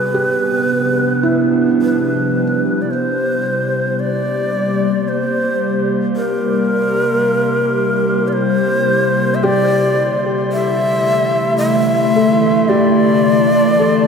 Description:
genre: ambient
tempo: 55 BPM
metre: 3/4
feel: straight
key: C mixolydian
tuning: A4 = 440 Hz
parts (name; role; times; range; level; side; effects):
- breathy bright long shakuhachi; melody; 0.0-14.1 s; Bb4 to E5; -17 LUFS; equal; diffuse ambient delay
- warbly tape-like pad; sustained chords; 0.0-14.1 s; C3 to A5; -17 LUFS; equal; chorus, built-in reverb, phaser
- organ-like drone; drone; 0.0-14.1 s; C3 to G3; -26 LUFS; equal; ensemble chorus, built-in reverb
- felt-muted upright piano; arpeggios; 0.1-3.4, 9.4-14.1 s; E4 to A4; -21 LUFS; right 1 dB; diffuse ambient delay
- glass harmonica; texture; 2.9-14.1 s; C6; -29 LUFS; left 3 dB; none
room: wet huge ambient reverb, RT60 7.1 s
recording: none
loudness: -13 LUFS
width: side -6 dB against mid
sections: 0.0-2.9 A section; 2.9-14.1 B section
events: fade-in on synth drone 2.9-14.1; fade-in on glass harmonica 2.9-14.1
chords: 0.0 G7; 2.9 C7; 9.4 Asus4

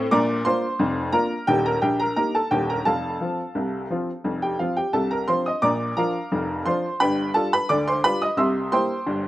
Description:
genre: ragtime piano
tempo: 87 BPM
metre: 2/4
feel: straight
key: Bb major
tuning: A4 = 440 Hz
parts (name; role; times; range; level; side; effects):
- clear upright piano; solo; 0.0-9.3 s; Eb1 to E6; -20 LUFS; equal; none
room: little or no reverb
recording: recorded outdoors, with no room sound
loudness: -20 LUFS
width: side -15 dB against mid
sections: 0.0-9.3 A section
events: none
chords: 0.1 Bb; 1.5 Eb; 2.9 F; 5.6 Bb; 7.0 G7; 8.4 C7

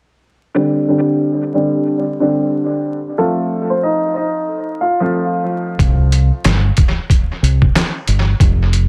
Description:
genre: hip hop, boom-bap hip-hop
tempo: 92 BPM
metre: 4/4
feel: swing 60% on 16ths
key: C dorian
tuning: A4 = 443 Hz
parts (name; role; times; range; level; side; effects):
- warm grand piano; accompaniment; 0.5-5.7 s; D3 to F4; -19 LUFS; equal; cassette tape, high-pass filter, low-pass filter, tape echo
- warm upright piano; melody; 3.2-5.8 s; A3 to F5; -20 LUFS; equal; high-pass filter, low-pass filter, tape echo
- deep dub fingered electric bass; bass; 5.8-8.9 s; F1 to C2; -15 LUFS; equal; none
- trip hop sampler-style drum kit; drums; 5.8-8.9 s; handclaps, hi-hat, kick drum, snare drum; -17 LUFS; equal; tape echo
room: digital ambience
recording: echo-heavy mix, vinyl crackle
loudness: -16 LUFS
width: mono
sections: 0.6-8.9 A section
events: filter sweep 0.6-8.9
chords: 0.6 Csus2; 3.2 F; 5.8 C5

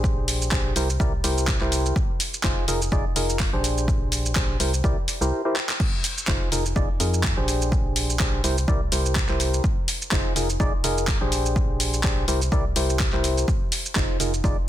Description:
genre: piano house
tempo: 125 BPM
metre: 4/4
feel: swing 55% on 16ths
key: F dorian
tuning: A4 = 439 Hz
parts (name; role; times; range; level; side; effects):
- percussive organ stab; riff; 0.0-14.6 s; D4 to D5; -27 LUFS; equal; chorus, sidechain pumping, dub echo
- organ-like FM bass; bass; 0.0-14.7 s; F1 to F2; -26 LUFS; equal; sidechain pumping
- electronic kick drum; drums; 0.0-14.5 s; none; -25 LUFS; equal; small room reverb
- garage drum kit; drums; 0.0-14.5 s; crash cymbal, handclaps, hi-hat, shaker; -26 LUFS; equal; small room reverb, soft clipping on snare
room: digital ambience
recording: dense, heavily limited modern master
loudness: -20 LUFS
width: side -12 dB against mid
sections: 0.0-5.8 A section; 5.8-14.7 A section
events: drum fill 5.6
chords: 0.0 Bb13; 0.8 C7; 2.0 Fm7; 3.6 Bb13; 4.6 C7; 5.8 Fm7; 7.5 Bb13; 8.4 C7; 9.6 Fm7; 11.3 Bb13; 12.3 C7; 13.5 Fm7

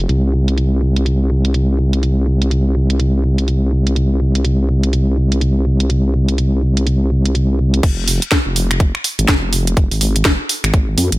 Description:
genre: bass house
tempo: 124 BPM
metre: 4/4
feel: swing 60% on 16ths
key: F minor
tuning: A4 = 440 Hz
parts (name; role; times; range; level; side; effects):
- vowel-sweep wobble bass; bass; 0.0-11.2 s; F1 to F2; -14 LUFS; equal; chorus, tube saturation, sidechain pumping
- garage drum kit; drums; 0.0-11.2 s; crash cymbal, finger snaps, hi-hat, snare drum; -19 LUFS; right 1 dB; overdrive, low-pass filter on hats, low-pass filter on cymbals, low-pass filter on snare
- electronic kick drum; drums; 7.8-10.9 s; none; -14 LUFS; equal; overdrive
room: digital ambience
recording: none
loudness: -13 LUFS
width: side -18 dB against mid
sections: 0.0-7.8 A section; 7.8-11.2 B section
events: drop 7.8-11.2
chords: none

